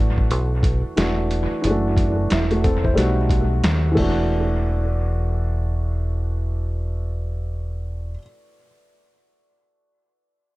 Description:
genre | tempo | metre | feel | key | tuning
hip hop, jazz-hop | 90 BPM | 4/4 | swing 60% on 16ths | E minor | A4 = 439 Hz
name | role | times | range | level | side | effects
dark upright piano | accompaniment | 0.0-8.2 s | E3 to C5 | -24 LUFS | equal | dub echo
deep dub fingered electric bass | bass | 0.0-8.2 s | E1 to D#2 | -21 LUFS | equal | none
trip hop sampler-style drum kit | drums | 0.2-4.2 s | crash cymbal, hi-hat, kick drum, snare drum | -23 LUFS | equal | dub echo
room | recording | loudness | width
digital ambience | echo-heavy mix | -19 LUFS | side -19 dB against mid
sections
0.0-4.3 A section; 4.3-7.0 B section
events
none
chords
0.0 Gmaj9 (rootless); 1.6 D9; 3.0 B7b13; 4.0 E9sus4

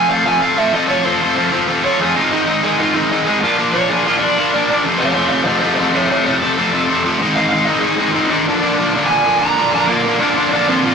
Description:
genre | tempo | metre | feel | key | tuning
punk | 190 BPM | 4/4 | straight | Bb major | A4 = 440 Hz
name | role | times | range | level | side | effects
crunchy overdriven guitar | melody | 0.0-10.9 s | Bb3 to Bb5 | -17 LUFS | right 1 dB | none
distorted electric guitar | riff | 0.0-10.9 s | F2 to F4 | -15 LUFS | left 1 dB | distortion
room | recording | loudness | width
moderate studio reverb, RT60 0.6 s | rough rehearsal-room recording, tube saturation | -13 LUFS | side -6 dB against mid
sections
0.0-9.9 A section; 9.9-10.9 B section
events
overdriven electric guitar solo 0.0-9.9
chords
0.0 F; 2.1 Ab; 3.4 Bb; 4.8 F; 7.2 Ab; 8.5 Bb

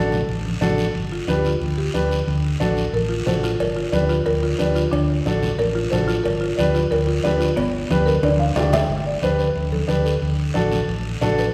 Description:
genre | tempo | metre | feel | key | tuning
latin, cumbia | 181 BPM | 4/4 | straight | G major | A4 = 441 Hz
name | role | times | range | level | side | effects
warm upright piano | accompaniment | 0.0-11.5 s | D4 to D5 | -26 LUFS | equal | none
hollow-body short-scale fingered electric bass | bass | 0.0-11.5 s | G1 to D2 | -25 LUFS | equal | none
congas | percussion | 0.1-11.4 s | none | -30 LUFS | equal | none
guiro | percussion | 0.1-11.5 s | none | -36 LUFS | equal | none
buzzing marimba with medium mallets | melody | 1.1-11.5 s | B3 to G5 | -26 LUFS | equal | none
cowbell and timbales | percussion | 3.6-8.8 s | none | -32 LUFS | equal | none
room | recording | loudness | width
wet concert hall reverb, RT60 2.2 s | recorded in a church or concert hall | -21 LUFS | mono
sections
0.0-8.9 A section; 8.9-11.5 B section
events
marimba solo 0.0-8.9; drum fill 7.9-8.9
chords
0.0 D; 1.0 G; 2.3 D; 3.6 G; 4.9 D; 6.3 G; 10.2 D

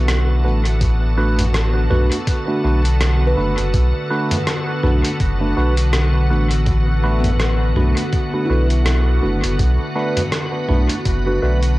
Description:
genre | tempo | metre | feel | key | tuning
ambient dub | 82 BPM | 4/4 | swing 57% on 16ths | B minor | A4 = 440 Hz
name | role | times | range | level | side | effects
soft additive organ-like pad | sustained chords | 0.0-11.8 s | D3 to B4 | -24 LUFS | left 1 dB | ensemble chorus, built-in reverb, cassette tape
handpan | arpeggios | 0.0-11.2 s | B3 to E5 | -29 LUFS | left 1 dB | cassette tape, analog delay
warm sub bass | bass | 0.0-11.8 s | F#1 to B1 | -16 LUFS | equal | tube saturation
lo-fi sampler-style drum kit | drums | 0.1-11.8 s | hi-hat, rim click, toms | -25 LUFS | equal | dub echo
barky tine electric piano | stabs | 0.4-11.6 s | A3 to B4 | -23 LUFS | right 2 dB | phaser, cassette tape, dub echo
electronic kick drum | drums | 0.8-11.2 s | none | -20 LUFS | equal | none
room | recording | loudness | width
light reverb, digital ambience | home recording on cassette | -15 LUFS | side -18 dB against mid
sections
0.0-11.8 A section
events
none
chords
0.0 Bm7

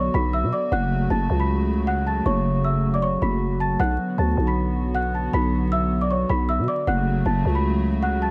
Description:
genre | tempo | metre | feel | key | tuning
hip hop, trap | 156 BPM | 4/4 | half-time | B minor | A4 = 439 Hz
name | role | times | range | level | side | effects
worn celesta | melody | 0.0-8.3 s | C#5 to B6 | -28 LUFS | equal | plate reverb, tape echo
hollow soft pad | sustained chords | 0.0-8.3 s | C#3 to F#4 | -28 LUFS | equal | chorus
growling 808-style bass | bass | 0.0-8.3 s | F#1 to B2 | -25 LUFS | equal | none
room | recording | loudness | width
light reverb | dark, warm production, vinyl crackle | -22 LUFS | mono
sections
0.0-8.3 A section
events
none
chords
0.0 Bm; 0.7 F#m; 3.8 Bm; 6.9 F#m

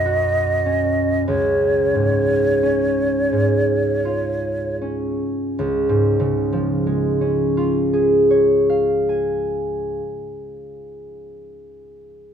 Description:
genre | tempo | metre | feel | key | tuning
classical, impressionist duo for flute and harp | 25-35 BPM (dotted quarters) | 6/8 | rubato | Db major | A4 = 440 Hz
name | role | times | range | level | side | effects
mellow hollow concert flute | melody | 0.0-4.8 s | Db5 to Eb5 | -20 LUFS | equal | none
concert harp | accompaniment | 0.0-11.6 s | Cb2 to Ab5 | -18 LUFS | equal | none
room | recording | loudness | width
moderate large studio reverb, RT60 1.2 s | minimal, uncompressed stereo recording | -17 LUFS | side -8 dB against mid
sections
0.0-5.6 A section; 5.6-10.1 B section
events
slowing down 0.0-5.6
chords
0.0 Cbadd9; 1.3 Db

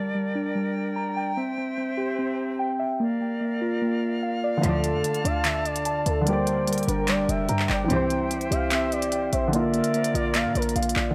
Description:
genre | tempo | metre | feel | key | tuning
hip hop, trap | 147 BPM | 4/4 | half-time | unclear | A4 = 440 Hz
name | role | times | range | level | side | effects
bright flute section | sustained chords | 0.0-11.1 s | C4 to A5 | -35 LUFS | equal | none
muted felt-like synth keys | arpeggios | 0.0-11.1 s | D3 to Bb5 | -29 LUFS | equal | chorus, low-pass filter, tape echo
gliding portamento lead | second line | 4.6-10.7 s | A4 to F5 | -31 LUFS | equal | chorus, tape echo
dark grand piano | accompaniment | 4.6-11.1 s | D3 to D5 | -32 LUFS | equal | low-pass filter
dark chamber string section | stabs | 4.6-4.8, 7.9-8.1 s | C2 to F3 | -31 LUFS | equal | none
short 808-style bass | bass | 4.6-11.1 s | F1 to Bb2 | -32 LUFS | equal | none
trap drum kit | drums | 4.6-11.1 s | handclaps, hi-hat | -31 LUFS | equal | none
room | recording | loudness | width
studio reverb | dry, gritty hardware recording | -25 LUFS | mono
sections
0.0-11.1 A section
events
none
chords
0.0 Gm; 1.4 C; 3.0 Bb; 4.6 Dm; 6.3 Gm; 7.9 C; 9.5 Bb

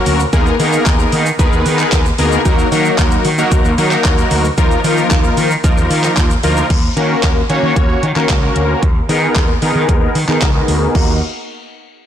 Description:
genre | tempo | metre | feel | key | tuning
dance-pop | 113 BPM | 4/4 | straight | Eb minor | A4 = 440 Hz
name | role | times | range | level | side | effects
big bright polysynth | accompaniment | 0.0-11.2 s | F3 to Db5 | -15 LUFS | left 1 dB | chorus, sidechain pumping, low-pass filter
fretless electric bass | bass | 0.1-11.2 s | Db2 to Eb3 | -17 LUFS | equal | sidechain pumping
pop drum kit | drums | 0.1-11.1 s | crash cymbal, handclaps, hi-hat, kick drum, shaker | -16 LUFS | equal | none
room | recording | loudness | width
light reverb | blown-out, overdriven recording, overdrive | -11 LUFS | side -10 dB against mid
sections
0.0-6.7 A section; 6.7-10.9 B section; 10.9-12.1 C section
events
filter sweep on analog polysynth 6.7-10.9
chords
0.3 Abmadd9/Eb; 2.5 Ebm; 4.6 Bbsus4/Eb; 6.7 Gb/Eb; 8.8 Abmadd9/Eb; 10.9 Ebm

